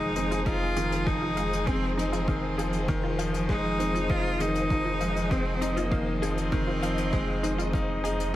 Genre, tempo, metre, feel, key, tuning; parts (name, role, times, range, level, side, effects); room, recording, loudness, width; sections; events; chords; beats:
piano and strings electronica; 99 BPM; 4/4; straight; F minor; A4 = 441 Hz
clear cello; melody; 0.0-8.0 s; Bb3 to F4; -31 LUFS; equal
dark symphonic string section; sustained chords; 0.0-8.4 s; F3 to Eb5; -34 LUFS; equal; sidechain pumping
bright upright piano; riff; 0.0-8.4 s; Eb3 to Eb4; -30 LUFS; left 1 dB; digital delay
warm sub bass; bass; 0.0-8.4 s; F1; -34 LUFS; equal; sidechain pumping
wide unison pluck; arpeggios; 0.2-8.2 s; Eb4 to F5; -37 LUFS; equal
hi-hat; drums; 0.2-8.3 s; -43 LUFS; left 5 dB
electronic kick drum; drums; 0.5-7.9 s; -31 LUFS; equal; overdrive
light reverb, studio reverb; -25 LUFS; side -14 dB against mid
0.0-8.4 A section
0.0 Fm7
0.46 1.07 | 1.67 2.28 2.89 3.49 | 4.10 4.70 5.31 5.92 | 6.52 7.13 7.73 8.34